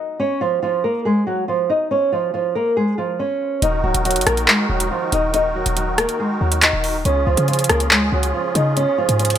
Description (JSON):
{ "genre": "hip hop, drill", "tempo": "140 BPM", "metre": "4/4", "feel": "half-time", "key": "unclear", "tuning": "A4 = 440 Hz", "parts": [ { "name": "flamenco guitar", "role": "melody", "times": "0.0-9.4 s", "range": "F3 to Eb5", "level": "-19 LUFS", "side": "right 1 dB", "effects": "low-pass filter, digital delay" }, { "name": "musette accordion", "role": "sustained chords", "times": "3.6-9.4 s", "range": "Db3 to Bb4", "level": "-25 LUFS", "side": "right 1 dB", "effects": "none" }, { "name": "short 808-style bass", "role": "bass", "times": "3.6-9.4 s", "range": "Db1 to Db3", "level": "-21 LUFS", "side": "left 1 dB", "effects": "none" }, { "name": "drill drum kit", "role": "drums", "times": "3.6-9.4 s", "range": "handclaps, hi-hat, rim click", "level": "-17 LUFS", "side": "equal", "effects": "none" } ], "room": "light reverb, small room ambience", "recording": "none", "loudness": "-16 LUFS", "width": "side -10 dB against mid", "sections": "0.0-9.4 A section", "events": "none", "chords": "0.2 Db", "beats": "| 0.20 0.62 1.05 1.48 | 1.91 2.34 2.77 3.19 | 3.62 4.05 4.48 4.91 | 5.34 5.77 6.20 6.62 | 7.05 7.48 7.91 8.34 | 8.77 9.20" }